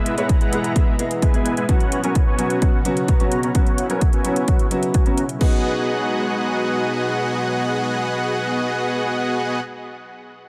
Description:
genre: EDM, festival progressive house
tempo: 129 BPM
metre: 4/4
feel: straight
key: G# minor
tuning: A4 = 440 Hz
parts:
  - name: lush unison pad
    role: sustained chords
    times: 0.0-9.6 s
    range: B2 to A#5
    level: -30 LUFS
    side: equal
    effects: chorus, sidechain pumping
  - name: dense compressed supersaw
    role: riff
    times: 0.0-9.6 s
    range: G#3 to A#5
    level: -25 LUFS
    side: equal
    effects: sidechain pumping, low-pass filter, dub echo
  - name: house drum kit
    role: drums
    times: 0.1-5.5 s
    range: crash cymbal, hi-hat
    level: -34 LUFS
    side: equal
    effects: none
  - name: warm grand piano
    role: accompaniment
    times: 0.2-9.6 s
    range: F#3 to C#5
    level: -28 LUFS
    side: equal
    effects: sidechain pumping, dub echo
  - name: electronic kick drum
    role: drums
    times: 0.3-5.5 s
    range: none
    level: -20 LUFS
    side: equal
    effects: none
room: light reverb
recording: none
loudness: -20 LUFS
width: mono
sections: 0.0-5.4 A section; 5.4-9.1 B section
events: filter sweep on supersaw synth 0.0-5.4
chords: 0.0 E; 5.4 G#m7

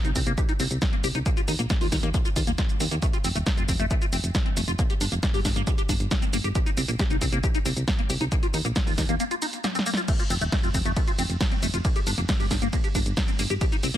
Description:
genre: uplifting trance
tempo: 136 BPM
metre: 4/4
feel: straight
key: unclear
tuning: A4 = 441 Hz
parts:
  - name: liquid acid bass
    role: arpeggios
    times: 0.0-14.0 s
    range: A3 to G4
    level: -30 LUFS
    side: left 2 dB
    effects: phaser, wide subtle chorus, sidechain pumping, dub echo
  - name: solid FM bass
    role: bass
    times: 0.0-14.0 s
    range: Eb1 to Eb2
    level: -28 LUFS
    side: equal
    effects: sidechain pumping
  - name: punchy analog drum machine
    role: drums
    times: 0.0-14.0 s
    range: crash cymbal, hi-hat, ride cymbal, shaker, snare drum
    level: -30 LUFS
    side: equal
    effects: none
  - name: electronic kick drum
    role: drums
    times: 0.2-13.7 s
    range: none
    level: -25 LUFS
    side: equal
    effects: none
room: digital ambience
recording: dense, heavily limited modern master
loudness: -22 LUFS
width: side -12 dB against mid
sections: 0.0-14.0 A section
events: drum fill 9.6-10.1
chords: 0.0 N.C.; 1.3 Ebsus2; 3.0 F; 4.8 Gm; 6.6 N.C.; 8.3 Ebsus2; 10.1 F; 11.8 Gm

